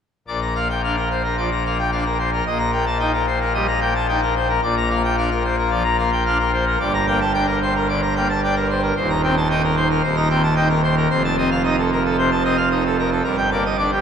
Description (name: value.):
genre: classical, organ toccata.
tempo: 111 BPM.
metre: 4/4.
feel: straight.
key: Bb major.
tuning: A4 = 439 Hz.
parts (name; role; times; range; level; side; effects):
pipe organ, full organ; solo; 0.3-14.0 s; Eb1 to Bb5; -17 LUFS; equal; none.
room: wet cathedral reverb, RT60 4.4 s.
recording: none.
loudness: -17 LUFS.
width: side -7 dB against mid.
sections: 0.3-14.0 A section.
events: none.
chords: 0.3 Bb; 2.5 Eb/Bb; 4.6 Bb; 6.8 Gm; 9.0 Cm7/Eb; 11.1 F7; 13.2 Gm.